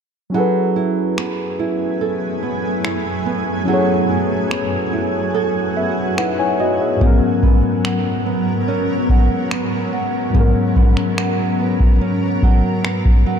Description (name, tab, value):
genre	contemporary R&B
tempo	72 BPM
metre	4/4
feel	straight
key	F# minor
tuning	A4 = 440 Hz
part	muted felt-like synth keys	accompaniment	0.3-13.4 s	G#2 to G#5	-20 LUFS	left 3 dB	chorus
part	granular cloud pad	sustained chords	1.6-13.4 s	F#2 to G#5	-23 LUFS	equal	built-in reverb, sidechain pumping
part	nylon-string guitar	arpeggios	0.3-13.4 s	G#2 to A4	-23 LUFS	right 8 dB	none
part	booming analog drum machine	drums	1.2-13.2 s	finger snaps, kick drum	-17 LUFS	equal	none
room	light reverb, digital ambience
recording	dark, warm production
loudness	-15 LUFS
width	side -7 dB against mid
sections	0.3-13.4 A section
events	synth keys fill 5.3-7.0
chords	0.3 F#m11; 7.0 G#m11